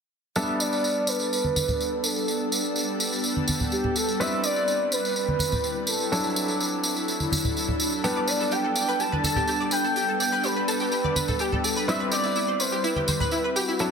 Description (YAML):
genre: progressive house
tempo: 125 BPM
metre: 4/4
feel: straight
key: G major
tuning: A4 = 439 Hz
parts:
  - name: expressive portamento lead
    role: melody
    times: 0.4-13.9 s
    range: F#4 to A5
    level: -27 LUFS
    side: right 1 dB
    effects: lush chorus, dub echo
  - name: shimmering ambient pad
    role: sustained chords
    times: 1.1-13.9 s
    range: F#3 to B4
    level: -30 LUFS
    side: left 1 dB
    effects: chorus, built-in reverb
  - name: clear concert grand piano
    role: stabs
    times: 0.4-13.9 s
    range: F#3 to B4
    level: -31 LUFS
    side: equal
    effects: dub echo
  - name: tambourine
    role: percussion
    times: 0.4-13.9 s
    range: none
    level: -29 LUFS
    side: right 1 dB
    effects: none
  - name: congas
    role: percussion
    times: 1.4-13.3 s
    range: none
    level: -29 LUFS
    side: right 1 dB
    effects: none
  - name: analog pluck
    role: arpeggios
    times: 8.0-13.8 s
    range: E4 to D5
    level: -30 LUFS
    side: left 1 dB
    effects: ensemble chorus, dub echo
room: moderate lush hall reverb, RT60 2.5 s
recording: dense, heavily limited modern master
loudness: -22 LUFS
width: side -6 dB against mid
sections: 0.4-13.9 A section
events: none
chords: 0.4 Gadd9; 4.2 Cmaj7; 6.1 Dadd9; 8.0 Gadd9; 11.9 Cmaj7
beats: | 0.36 0.84 1.32 1.80 | 2.28 2.76 3.24 3.72 | 4.20 4.68 5.16 5.64 | 6.12 6.60 7.08 7.56 | 8.04 8.52 9.00 9.48 | 9.96 10.44 10.92 11.40 | 11.88 12.36 12.84 13.32 | 13.80